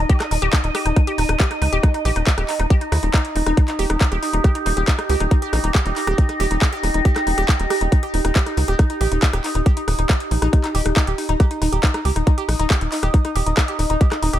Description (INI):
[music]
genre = psychedelic trance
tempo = 138 BPM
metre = 4/4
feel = straight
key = Eb major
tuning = A4 = 437 Hz
[part]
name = overtone-sweeping drone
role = sustained chords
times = 0.0-14.4 s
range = Eb4 to Eb5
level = -25 LUFS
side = right 1 dB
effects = chorus, built-in reverb, sidechain pumping
[part]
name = woody wave-folded pluck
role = riff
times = 0.0-14.4 s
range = Eb4 to G4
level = -25 LUFS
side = moving between left 4 dB and right 2 dB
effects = chorus, auto-pan, sidechain pumping, tape echo
[part]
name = tight sequencer bass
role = bass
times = 0.0-14.4 s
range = Eb1 to Eb2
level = -21 LUFS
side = equal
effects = none
[part]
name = electronic kick drum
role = drums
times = 0.1-14.1 s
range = none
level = -16 LUFS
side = equal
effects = none
[part]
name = garage drum kit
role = drums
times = 0.1-14.4 s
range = handclaps, hi-hat, rim click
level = -25 LUFS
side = left 1 dB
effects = none
[sound]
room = little or no reverb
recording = none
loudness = -16 LUFS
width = side -12 dB against mid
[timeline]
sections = 0.0-14.4 A section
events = none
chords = 0.0 Eb5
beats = | 0.10 0.53 0.96 1.40 | 1.83 2.27 2.70 3.14 | 3.57 4.01 4.44 4.88 | 5.31 5.75 6.18 6.62 | 7.05 7.49 7.92 8.36 | 8.79 9.23 9.66 10.10 | 10.53 10.96 11.40 11.83 | 12.27 12.70 13.14 13.57 | 14.01